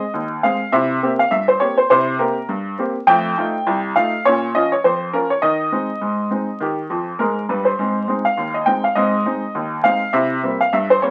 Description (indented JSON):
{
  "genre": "ragtime piano",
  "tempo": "102 BPM",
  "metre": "2/4",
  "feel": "swing 56% on 16ths",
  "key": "Ab major",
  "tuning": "A4 = 441 Hz",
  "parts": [
    { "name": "clear upright piano", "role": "solo", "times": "0.0-11.1 s", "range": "C2 to G5", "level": "-18 LUFS", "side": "equal", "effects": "none" }
  ],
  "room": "moderate studio reverb, RT60 0.5 s",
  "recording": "very old 78 rpm record, vinyl crackle, nothing above 10.6 kHz",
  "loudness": "-19 LUFS",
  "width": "mono",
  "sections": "0.0-11.1 A section",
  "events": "upright piano fill 6.9-7.8",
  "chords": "0.0 Ab; 0.7 C7; 3.1 F7; 4.2 Bbm; 5.4 Ab/Eb; 6.6 Eb; 7.8 Ab; 10.1 C7"
}